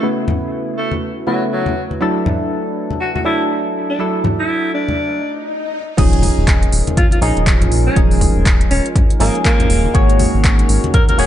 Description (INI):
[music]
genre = deep house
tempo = 121 BPM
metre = 4/4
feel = swing 60% on 16ths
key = unclear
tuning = A4 = 440 Hz
[part]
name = growling alto saxophone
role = melody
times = 0.0-11.3 s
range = F#3 to Bb4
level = -22 LUFS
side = equal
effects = dub echo
[part]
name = hollow soft pad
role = sustained chords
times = 0.0-11.3 s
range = Ab3 to B4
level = -26 LUFS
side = right 2 dB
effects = chorus, vintage 12-bit sampler grit, sidechain pumping
[part]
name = percussive organ stab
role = stabs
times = 0.0-11.3 s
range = C#3 to Db5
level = -20 LUFS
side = equal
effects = chorus, phaser, sidechain pumping, dub echo
[part]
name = congas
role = percussion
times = 0.3-11.2 s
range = none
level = -21 LUFS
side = left 2 dB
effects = sidechain pumping on perc
[part]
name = swell and sub drop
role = sound effects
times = 5.2-8.0 s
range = none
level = -26 LUFS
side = left 1 dB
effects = none
[part]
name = round analog bass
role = bass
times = 6.0-11.3 s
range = Eb1 to Bb1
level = -17 LUFS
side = equal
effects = sidechain pumping
[part]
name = deep house drum kit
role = drums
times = 6.0-11.3 s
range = crash cymbal, handclaps, hi-hat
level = -22 LUFS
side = equal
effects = low-pass filter on hats, low-pass filter on cymbals, low-pass filter on snare, low-pass filter on room
[part]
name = electronic kick drum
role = drums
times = 6.0-11.1 s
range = none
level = -14 LUFS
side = equal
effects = none
[sound]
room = light reverb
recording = nothing above 10.5 kHz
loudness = -13 LUFS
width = side -11 dB against mid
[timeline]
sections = 0.0-6.0 A section; 6.0-11.3 B section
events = filter sweep on synth stab 0.0-6.0; swell 5.2-6.0; break 5.5-6.0; drop 6.0-11.3; impact 6.0-8.0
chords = 0.0 B9sus4; 1.8 E9sus4; 6.0 Eb9sus4; 9.9 Ab9sus4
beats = | 0.03 0.53 1.02 1.52 | 2.01 2.51 3.01 3.50 | 4.00 4.49 4.99 5.49 | 5.98 6.48 6.97 7.47 | 7.96 8.46 8.96 9.45 | 9.95 10.44 10.94